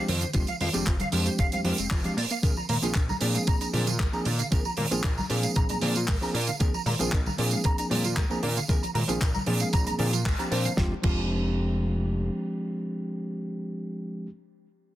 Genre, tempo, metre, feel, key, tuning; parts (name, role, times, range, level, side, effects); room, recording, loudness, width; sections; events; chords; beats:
nu-disco, nu disco; 115 BPM; 4/4; straight; F dorian; A4 = 440 Hz
bell-like tine electric piano; accompaniment; 0.0-14.3 s; F3 to C5; -31 LUFS; equal; sidechain pumping, dub echo
soft round pluck; arpeggios; 0.0-11.2 s; D3 to D4; -37 LUFS; right 2 dB
mellow electric guitar; riff; 0.0-11.2 s; C4 to Bb5; -34 LUFS; right 1 dB; ensemble chorus, dub echo
fat analog bass; bass; 0.1-12.3 s; F1 to Bb2; -30 LUFS; equal
damped 70s drum kit; drums; 0.1-11.2 s; crash cymbal, handclaps, hi-hat, snare drum, tambourine; -31 LUFS; right 3 dB; soft clipping on snare
congas; percussion; 0.1-10.0 s; -37 LUFS; left 2 dB
electronic kick drum; drums; 0.3-11.2 s; -26 LUFS; equal; overdrive
studio reverb; dense, heavily limited modern master; -24 LUFS; side -14 dB against mid
0.0-10.8 A section; 10.8-14.9 B section
drop 0.0-10.8; band accent 10.3
0.0 Fm69; 2.2 Bb7; 10.8 Fm69
| 0.34 0.87 1.39 1.91 | 2.43 2.95 3.48 4.00 | 4.52 5.04 5.56 6.08 | 6.61 7.13 7.65 8.17 | 8.69 9.21 9.74 10.26 | 10.78 11.30 11.82 12.35 | 12.87 13.39 13.91